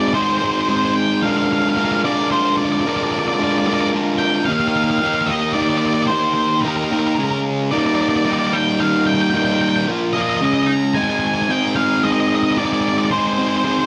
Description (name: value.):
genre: rock.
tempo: 111 BPM.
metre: 3/4.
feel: straight.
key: Ab lydian.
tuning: A4 = 438 Hz.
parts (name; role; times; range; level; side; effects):
octave-fuzz lead guitar; melody; 0.0-13.9 s; Bb4 to Bb5; -22 LUFS; equal; distortion, digital delay.
fuzz guitar; riff; 0.0-13.9 s; Bb2 to Bb4; -20 LUFS; equal; distortion.
room: moderate large studio reverb, RT60 1.2 s.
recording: none.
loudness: -18 LUFS.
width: mono.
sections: 0.0-13.9 A section.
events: none.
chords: 0.0 Ab; 1.2 Bb/Ab; 4.5 Eb; 7.2 Db5; 7.7 Ebmaj7; 9.9 Bb5; 10.4 Db5; 11.0 Ab.